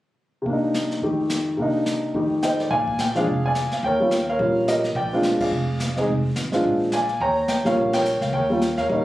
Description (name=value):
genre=jazz piano trio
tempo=213 BPM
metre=4/4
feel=swing 60% on 8ths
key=Bb mixolydian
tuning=A4 = 438 Hz
part: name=warm baby grand piano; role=melody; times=0.4-9.0 s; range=F2 to Bb5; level=-20 LUFS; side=equal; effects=none
part: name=jazz brush drum kit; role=drums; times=0.5-9.0 s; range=brushed snare drum, hi-hat, kick drum, ride cymbal, snare drum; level=-32 LUFS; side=left 1 dB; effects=none
part: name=upright bass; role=bass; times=2.7-9.0 s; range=F1 to Bb2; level=-27 LUFS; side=equal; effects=none
room=light reverb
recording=recorded on a phone in the room, studio reverb, compression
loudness=-20 LUFS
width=side -15 dB against mid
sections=0.5-2.7 A section; 2.7-9.0 B section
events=band accent 5.4, 7.9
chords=0.5 Cm9; 1.0 F9; 1.6 Cm9; 2.1 F9; 2.7 Bb7; 3.8 Eb7; 5.0 Bb7; 6.1 Fm; 6.6 Bb7; 7.2 Eb7